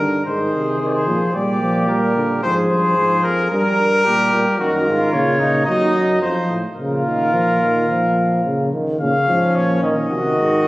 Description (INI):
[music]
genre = classical, imitative canzona for brass ensemble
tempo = 110 BPM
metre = 4/4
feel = straight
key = Bb minor from 4.6 s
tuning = A4 = 440 Hz
[part]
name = clear trumpet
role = melody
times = 0.0-10.7 s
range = Bb4 to F5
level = -20 LUFS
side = left 1 dB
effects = none
[part]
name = mellow trombone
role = accompaniment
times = 0.0-10.7 s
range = Db3 to G3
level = -20 LUFS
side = equal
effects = none
[part]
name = mellow bass trombone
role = bass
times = 0.0-10.7 s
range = Eb2 to C3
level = -24 LUFS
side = right 1 dB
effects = none
[part]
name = clear flugelhorn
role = second line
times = 0.2-10.7 s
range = Db4 to Bb4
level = -22 LUFS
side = right 1 dB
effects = none
[sound]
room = wet concert hall reverb, RT60 2.3 s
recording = recorded on a phone in the room, studio reverb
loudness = -15 LUFS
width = side -19 dB against mid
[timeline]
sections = 0.3-9.0 A section; 9.0-10.7 B section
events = none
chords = 0.3 Ab; 1.3 Gm/Bb; 2.4 Fm; 3.5 Gm; 4.6 Gb; 5.7 Ebm; 6.2 F; 6.8 Bbm; 10.1 Cdim